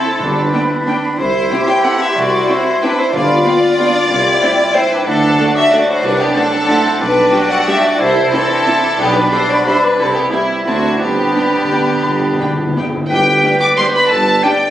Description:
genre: classical, orchestral ballroom waltz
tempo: 163-201 BPM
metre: 3/4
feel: rubato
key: G major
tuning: A4 = 442 Hz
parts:
  - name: bright clarinet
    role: second line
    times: 0.0-14.7 s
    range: D4 to D5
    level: -20 LUFS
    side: right 1 dB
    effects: none
  - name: silver concert flute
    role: second line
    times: 0.0-12.9 s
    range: F#5 to C6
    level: -21 LUFS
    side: equal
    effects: none
  - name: warm chamber violin section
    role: second line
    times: 0.0-14.5 s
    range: E4 to G5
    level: -16 LUFS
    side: left 1 dB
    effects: none
  - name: warm French horn section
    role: sustained chords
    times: 0.0-14.7 s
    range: D3 to F4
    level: -24 LUFS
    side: left 2 dB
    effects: none
  - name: dark trumpet section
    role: stabs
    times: 0.0-14.7 s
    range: G3 to D5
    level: -20 LUFS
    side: equal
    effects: none
  - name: rich chamber cello section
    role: bass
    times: 0.0-14.4 s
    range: G2 to G4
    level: -23 LUFS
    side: right 2 dB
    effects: none
  - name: dark studio double bass section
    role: bass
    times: 0.2-14.4 s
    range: G1 to G2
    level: -27 LUFS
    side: right 2 dB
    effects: none
  - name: mellow tuba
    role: bass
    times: 0.2-14.4 s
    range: G1 to D2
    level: -24 LUFS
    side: right 2 dB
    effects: none
  - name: timpani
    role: percussion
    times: 0.2-0.7, 3.1-5.5, 11.0-13.6 s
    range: G2 to D3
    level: -24 LUFS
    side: left 2 dB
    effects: none
  - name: warm chamber violin section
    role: melody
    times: 0.5-14.7 s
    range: F#5 to D6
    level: -19 LUFS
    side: left 1 dB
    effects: none
  - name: warm chamber viola section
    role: accompaniment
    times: 0.5-14.5 s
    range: G3 to G4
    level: -23 LUFS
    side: right 2 dB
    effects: none
room: wet recital hall reverb, RT60 1.4 s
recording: recorded on a phone in the room, studio reverb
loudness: -11 LUFS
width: side -12 dB against mid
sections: 0.0-13.1 A section; 13.1-14.7 B section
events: timpani fill 11.0-13.1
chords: 0.2 G; 1.2 C; 3.1 G7; 4.1 C; 5.1 D; 6.0 D7/C; 7.0 G/B; 8.0 Am/C; 9.0 G/B; 10.0 Cmaj7; 10.7 D9; 11.0 G

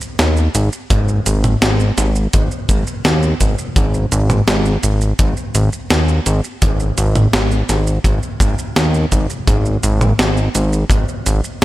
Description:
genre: synthwave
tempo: 84 BPM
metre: 4/4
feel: straight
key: unclear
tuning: A4 = 441 Hz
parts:
  - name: clean 12-bit digital drum machine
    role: drums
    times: 0.0-11.6 s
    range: hi-hat, shaker, snare drum, toms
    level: -18 LUFS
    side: equal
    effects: overdrive
  - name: fat analog bass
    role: bass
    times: 0.2-11.6 s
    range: G#1 to D#2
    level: -15 LUFS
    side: equal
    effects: sidechain pumping
  - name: kick drum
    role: drums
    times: 0.9-11.0 s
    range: none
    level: -19 LUFS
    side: equal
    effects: none
room: light reverb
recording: none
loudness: -13 LUFS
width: side -16 dB against mid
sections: 0.0-11.6 A section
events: none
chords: none

